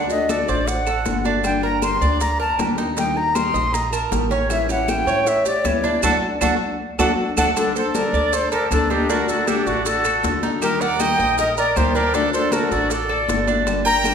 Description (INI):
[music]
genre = latin, Cuban son and guajira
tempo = 157 BPM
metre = 4/4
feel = straight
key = G harmonic minor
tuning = A4 = 440 Hz
[part]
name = jazz flute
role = melody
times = 0.0-14.1 s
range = F#4 to C6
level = -22 LUFS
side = left 1 dB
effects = none
[part]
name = nylon-string guitar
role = accompaniment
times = 0.0-14.1 s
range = D3 to A4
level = -25 LUFS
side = left 4 dB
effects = none
[part]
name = Cuban tres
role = arpeggios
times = 0.0-14.1 s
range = C#4 to Eb5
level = -24 LUFS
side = right 4 dB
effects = none
[part]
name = upright bass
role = bass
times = 0.0-14.1 s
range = G1 to A2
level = -27 LUFS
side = right 1 dB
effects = none
[part]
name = bongos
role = percussion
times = 0.1-14.1 s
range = none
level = -33 LUFS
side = left 5 dB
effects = none
[part]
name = congas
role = percussion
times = 0.1-14.1 s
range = none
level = -30 LUFS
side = left 3 dB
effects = none
[part]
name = maracas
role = percussion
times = 0.1-14.1 s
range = none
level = -33 LUFS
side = right 7 dB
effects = none
[part]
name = claves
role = percussion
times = 0.3-14.1 s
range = none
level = -35 LUFS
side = right 1 dB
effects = none
[part]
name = brilliant trumpet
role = second line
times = 7.6-14.1 s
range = D4 to G5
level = -27 LUFS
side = right 5 dB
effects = none
[sound]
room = wet recital hall reverb, RT60 1.4 s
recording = recorded in a church or concert hall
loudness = -17 LUFS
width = side -7 dB against mid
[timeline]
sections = 0.0-7.6 A section; 7.6-14.1 A section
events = band accent 6.0-7.6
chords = 0.0 D; 1.4 Gm; 3.0 Eb; 4.5 A7; 6.0 D; 7.6 Gmadd9; 9.1 D; 10.6 Eb; 12.1 D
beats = 0.29 0.67 1.06 | 1.44 1.82 2.21 2.59 | 2.97 3.35 3.74 4.12 | 4.50 4.89 5.27 5.65 | 6.04 6.42 6.80 7.18 | 7.57 7.95 8.33 8.71 | 9.09 9.47 9.86 10.24 | 10.62 11.00 11.38 11.76 | 12.14 12.53 12.91 13.29 | 13.67 14.05